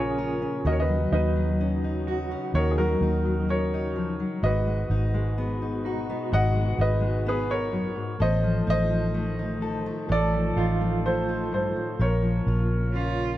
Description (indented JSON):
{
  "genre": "acoustic folk-pop ballad",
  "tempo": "64 BPM",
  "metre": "4/4",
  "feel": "straight",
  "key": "unclear",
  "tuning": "A4 = 441 Hz",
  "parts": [
    { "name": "clear grand piano", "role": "melody", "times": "0.0-13.4 s", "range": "F#4 to F#5", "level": "-29 LUFS", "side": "equal", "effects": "none" },
    { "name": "fingerpicked steel-string acoustic guitar", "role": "accompaniment", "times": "0.0-13.4 s", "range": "F#2 to A#4", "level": "-30 LUFS", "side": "left 3 dB", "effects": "none" },
    { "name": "dark studio string section", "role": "sustained chords", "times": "0.0-13.4 s", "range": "B2 to F#4", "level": "-36 LUFS", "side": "equal", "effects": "none" },
    { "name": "electric guitar through a small old amp", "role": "arpeggios", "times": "0.0-12.4 s", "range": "C#4 to G#4", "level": "-35 LUFS", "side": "right 4 dB", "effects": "tremolo" },
    { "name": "vintage muted fingered electric bass", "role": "bass", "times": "0.0-13.4 s", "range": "G#1 to D#2", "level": "-26 LUFS", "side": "equal", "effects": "none" },
    { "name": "rich cello", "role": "second line", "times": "12.9-13.4 s", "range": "E#4", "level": "-29 LUFS", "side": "right 5 dB", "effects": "none" }
  ],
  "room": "light reverb",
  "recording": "dark, warm production",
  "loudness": "-23 LUFS",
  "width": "side -14 dB against mid",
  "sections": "0.0-13.4 A section",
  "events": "none",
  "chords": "0.0 A#m; 0.7 D#m7; 4.4 G#m7; 8.2 F7/A; 12.0 A#m",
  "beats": "| 0.65 1.59 2.54 3.48 | 4.43 5.37 6.31 7.26 | 8.20 9.15 10.09 11.04 | 11.99 12.93"
}